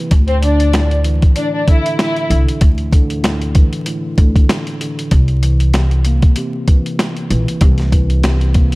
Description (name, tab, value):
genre	hip hop, boom-bap hip-hop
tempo	96 BPM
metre	4/4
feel	swing 56% on 16ths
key	unclear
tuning	A4 = 439 Hz
part	mellow tine electric piano	accompaniment	0.0-8.8 s	A2 to Bb3	-22 LUFS	equal	medium stereo tremolo, cassette tape, high-pass filter, low-pass filter
part	upright bass	bass	0.1-8.7 s	Bb1 to D2	-14 LUFS	equal	none
part	boom bap sampler-style drum kit	drums	0.1-8.8 s	hi-hat, kick drum, snare drum	-13 LUFS	equal	none
part	warm symphonic violin section	melody	0.3-2.3 s	C4 to E5	-18 LUFS	left 1 dB	high-pass filter, low-pass filter, slapback echo
room	studio reverb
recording	vinyl crackle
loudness	-12 LUFS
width	side -22 dB against mid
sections	0.1-8.8 A section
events	none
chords	0.1 Dsus2; 5.1 C7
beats	| 0.12 0.74 1.36 1.99 | 2.62 3.24 3.87 4.49 | 5.12 5.74 6.37 6.99 | 7.62 8.24